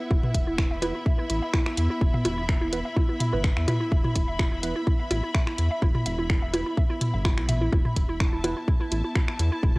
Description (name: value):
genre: minimal techno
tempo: 126 BPM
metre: 4/4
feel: swing 53% on 16ths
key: unclear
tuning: A4 = 440 Hz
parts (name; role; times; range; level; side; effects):
- rich symphonic string section; texture; 0.0-9.8 s; B3 to B5; -33 LUFS; equal; sidechain pumping, cassette tape
- hollow square pluck; riff; 0.1-9.8 s; E4 to E5; -32 LUFS; right 1 dB; chorus, cassette tape, sidechain pumping, tape echo
- round analog bass; bass; 0.1-9.7 s; E1 to E2; -28 LUFS; equal; sidechain pumping
- electronic kick drum; drums; 0.1-9.7 s; none; -23 LUFS; equal; studio reverb, cassette tape
- electronic percussion blips and toms; percussion; 0.1-9.8 s; none; -29 LUFS; equal; overdrive, studio reverb, cassette tape
- house drum kit; drums; 0.3-9.5 s; finger snaps, hi-hat; -33 LUFS; equal; studio reverb, cassette tape
- percussive organ stab; stabs; 0.8-8.6 s; E3 to B4; -35 LUFS; right 4 dB; chorus, cassette tape, tape echo
room: light reverb, digital ambience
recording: home recording on cassette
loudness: -22 LUFS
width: side -25 dB against mid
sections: 0.0-9.8 A section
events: none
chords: 0.0 E5